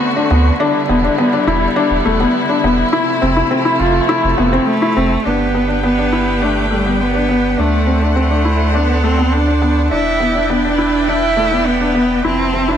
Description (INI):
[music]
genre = piano and strings electronica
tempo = 103 BPM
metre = 4/4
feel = straight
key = G major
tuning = A4 = 440 Hz
[part]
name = rich string quartet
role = sustained chords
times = 0.0-12.8 s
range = C3 to A5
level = -19 LUFS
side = equal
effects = none
[part]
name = felt-muted upright piano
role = riff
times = 0.0-12.8 s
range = A3 to F4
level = -16 LUFS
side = left 2 dB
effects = ping-pong delay
[part]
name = warm sub bass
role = bass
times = 0.3-12.8 s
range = E1 to D2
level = -18 LUFS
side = right 1 dB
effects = none
[part]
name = rich cello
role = melody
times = 4.7-12.8 s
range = G3 to E4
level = -17 LUFS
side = right 2 dB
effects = none
[sound]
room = moderate lush hall reverb, RT60 2.1 s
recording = none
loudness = -12 LUFS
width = side -9 dB against mid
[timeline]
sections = 0.0-5.3 A section; 5.3-12.8 B section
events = none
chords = 0.0 D7; 0.6 Em7; 2.9 Fmaj7; 5.3 G; 7.6 D7; 9.9 Em7; 12.2 Fmaj7